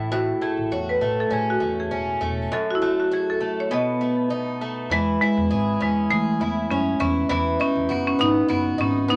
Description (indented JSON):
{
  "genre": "acoustic pop",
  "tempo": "100 BPM",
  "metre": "4/4",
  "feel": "swing 55% on 16ths",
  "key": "unclear",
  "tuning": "A4 = 440 Hz",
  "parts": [
    { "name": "picked twelve-string acoustic guitar", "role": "accompaniment", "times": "0.0-9.2 s", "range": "F#2 to G#4", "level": "-27 LUFS", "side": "equal", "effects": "none" },
    { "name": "upright bass", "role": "bass", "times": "0.0-9.2 s", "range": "E1 to E3", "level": "-32 LUFS", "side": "equal", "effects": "none" },
    { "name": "marimba with hard mallets", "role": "melody", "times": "0.1-9.2 s", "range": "G#3 to D#5", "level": "-25 LUFS", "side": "equal", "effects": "none" }
  ],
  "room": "wet studio ambience, RT60 0.5 s",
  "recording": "none",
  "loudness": "-23 LUFS",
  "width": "mono",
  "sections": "0.0-4.9 A section; 4.9-9.2 B section",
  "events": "none",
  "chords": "0.0 A6; 2.5 F#m; 3.7 B7; 4.9 C#m; 7.0 B"
}